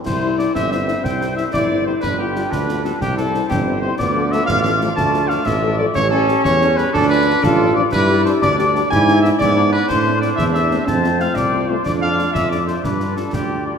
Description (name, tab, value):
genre	military-style march for wind band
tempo	122 BPM (dotted quarters)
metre	6/8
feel	straight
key	C major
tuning	A4 = 436 Hz
part	warm trombone section	sustained chords	0.0-13.8 s	A3 to F4	-21 LUFS	right 1 dB	none
part	warm cornet	melody	0.1-13.7 s	G4 to A5	-21 LUFS	equal	none
part	mellow hollow wooden piccolo	second line	0.1-13.8 s	G5 to A6	-25 LUFS	left 5 dB	none
part	mellow woodwind section	second line	0.1-13.8 s	E4 to D5	-27 LUFS	left 2 dB	none
part	warm tuba	bass	0.1-13.7 s	G1 to A2	-21 LUFS	right 2 dB	none
part	concert snare drum, clash cymbals and concert bass drum	drums	0.1-13.5 s	none	-27 LUFS	left 2 dB	none
part	mellow French horn section	accompaniment	0.2-13.7 s	F3 to A4	-26 LUFS	left 5 dB	none
room	wet concert hall reverb, RT60 2.1 s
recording	none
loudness	-15 LUFS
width	side -6 dB against mid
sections	0.1-13.8 A section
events	none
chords	0.1 C; 2.0 G7; 3.0 C; 4.0 Dm; 6.0 A7; 6.9 Dm; 7.9 G; 8.9 E7/G#; 9.9 Am; 10.9 F; 11.9 Dm/F; 12.8 G7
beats	| 0.06 0.55 | 1.04 1.53 | 2.02 2.52 | 3.01 3.50 | 3.99 4.48 | 4.97 5.46 | 5.96 6.45 | 6.94 7.43 | 7.92 8.41 | 8.90 9.40 | 9.89 10.38 | 10.87 11.36 | 11.86 12.35 | 12.84 13.33